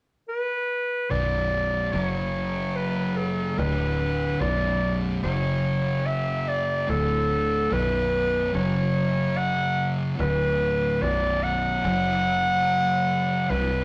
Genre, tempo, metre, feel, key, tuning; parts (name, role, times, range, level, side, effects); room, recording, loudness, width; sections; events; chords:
metal; 73 BPM; 4/4; straight; A4 = 436 Hz
clear clarinet; melody; 0.3-13.8 s; A4-23c to F#5; -28 LUFS; equal
thick fuzz guitar; riff; 1.1-13.8 s; B1 to F#3; -30 LUFS; equal; distortion
thick fuzz guitar; riff; 1.1-13.8 s; B1 to F#3; -34 LUFS; equal
fingered electric bass; bass; 1.1-13.8 s; B0 to F#1; -33 LUFS; equal; overdrive
wet stone room reverb, RT60 1.2 s; rough rehearsal-room recording, warm saturation; -25 LUFS; mono
0.0-1.1 A section; 1.1-13.8 B section
0.0 N.C.; 1.1 Bm; 1.9 F#5; 3.6 D5; 4.4 Bm; 5.2 F#5; 6.9 D5; 7.7 B5; 8.5 F#5; 10.2 D5; 11.0 Bm; 11.8 F#5